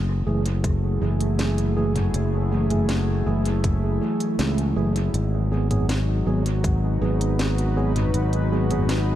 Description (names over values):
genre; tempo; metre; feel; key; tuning
ambient dub; 80 BPM; 4/4; straight; F# dorian; A4 = 440 Hz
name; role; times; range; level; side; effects
airy breathy pad; sustained chords; 0.0-9.2 s; F#3 to B4; -28 LUFS; left 1 dB; chorus
fingered electric bass; bass; 0.0-9.2 s; F#1 to C#2; -22 LUFS; equal; none
mellow tine electric piano; stabs; 0.3-8.9 s; E3 to G#4; -28 LUFS; right 3 dB; medium stereo tremolo, dub echo
organic electronic drum kit; drums; 0.5-9.0 s; hi-hat, snare drum, toms; -32 LUFS; equal; dub echo
electronic kick drum; drums; 0.6-6.8 s; none; -24 LUFS; equal; none
room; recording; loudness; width
light reverb, digital ambience; none; -20 LUFS; side -12 dB against mid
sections
0.0-9.2 A section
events
none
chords
0.0 F#m9; 5.1 G#m7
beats
0.64 1.39 | 2.14 2.89 3.64 4.39 | 5.14 5.89 6.64 7.39 | 8.14 8.89